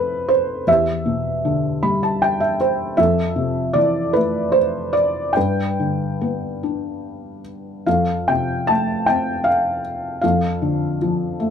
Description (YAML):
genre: classical, lyrical solo piano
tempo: 72-79 BPM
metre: 3/4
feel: rubato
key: F lydian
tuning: A4 = 440 Hz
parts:
  - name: felt-muted upright piano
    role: solo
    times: 0.0-11.5 s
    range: E2 to B5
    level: -18 LUFS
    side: equal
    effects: none
room: moderate small room reverb, RT60 0.5 s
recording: none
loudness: -17 LUFS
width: side -7 dB against mid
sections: 0.0-11.5 A section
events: felt piano fill 1.4-3.0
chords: 0.0 F; 0.7 Em7; 3.0 Fmaj7; 5.4 G; 7.9 F; 10.2 Dm/F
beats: | 0.68 1.45 2.22 | 2.98 3.76 4.55 | 5.37 6.20 7.03 | 7.86 8.68 9.46 | 10.23 11.01